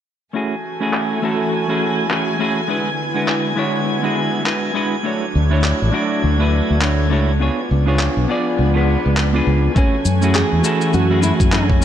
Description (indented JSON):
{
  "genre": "sunset chillout",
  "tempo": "102 BPM",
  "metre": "4/4",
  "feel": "swing 58% on 16ths",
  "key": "F# minor",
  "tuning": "A4 = 439 Hz",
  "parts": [
    { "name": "semi-hollow electric guitar", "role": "accompaniment", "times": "0.3-11.8 s", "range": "G#3 to D5", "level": "-20 LUFS", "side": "left 1 dB", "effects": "auto-pan, low-pass filter, tape echo, shimmer reverb" },
    { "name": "dark chamber string section", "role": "sustained chords", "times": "0.3-11.8 s", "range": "D3 to G#5", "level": "-22 LUFS", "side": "right 1 dB", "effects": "shimmer reverb" },
    { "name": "drifting glass-harmonics texture", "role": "texture", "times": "1.0-9.8 s", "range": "G#6", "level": "-31 LUFS", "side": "right 1 dB", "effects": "chorus, built-in reverb, shimmer reverb" },
    { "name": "electronic handclaps and shaker", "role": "drums", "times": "0.9-11.8 s", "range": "none", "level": "-25 LUFS", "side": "equal", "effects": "low-pass filter on snare, low-pass filter on perc, low-pass filter on room" },
    { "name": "fretless electric bass", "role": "bass", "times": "5.4-11.8 s", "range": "A1 to F#2", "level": "-16 LUFS", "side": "equal", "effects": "lush chorus" },
    { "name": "nylon-string guitar", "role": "melody", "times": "9.8-11.8 s", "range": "C#4 to G#4", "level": "-21 LUFS", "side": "right 1 dB", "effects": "digital delay, shimmer reverb" },
    { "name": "electronic kick drum", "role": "drums", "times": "9.8-11.8 s", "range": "none", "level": "-16 LUFS", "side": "equal", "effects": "none" }
  ],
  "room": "moderate concert hall reverb, RT60 2.2 s",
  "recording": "none",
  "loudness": "-15 LUFS",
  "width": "side -10 dB against mid",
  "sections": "0.3-9.8 A section; 9.8-11.8 B section",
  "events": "filter sweep on drum 0.3-9.8",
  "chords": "0.3 F#m9; 2.7 E7; 5.1 Dmaj7; 7.4 C#7b9; 9.8 F#m9"
}